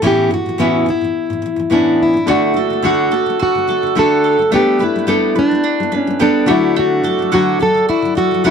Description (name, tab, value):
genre	acoustic pop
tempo	107 BPM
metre	4/4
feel	swing 55% on 16ths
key	D major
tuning	A4 = 441 Hz
part	nylon-string guitar	accompaniment	0.0-8.5 s	A2 to A4	-17 LUFS	left 1 dB	none
part	fingerpicked plugged-in steel-string acoustic guitar	melody	0.1-8.5 s	D4 to A4	-15 LUFS	equal	none
part	clear upright piano	accompaniment	2.3-8.5 s	A3 to D5	-24 LUFS	left 6 dB	none
part	mandolin	arpeggios	2.3-8.5 s	A3 to G5	-22 LUFS	right 12 dB	none
room	light reverb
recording	dry, close 1970s-style studio recording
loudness	-12 LUFS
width	side -7 dB against mid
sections	0.0-8.5 A section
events	none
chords	0.0 Aadd9; 2.3 D; 4.5 Gadd9; 6.5 D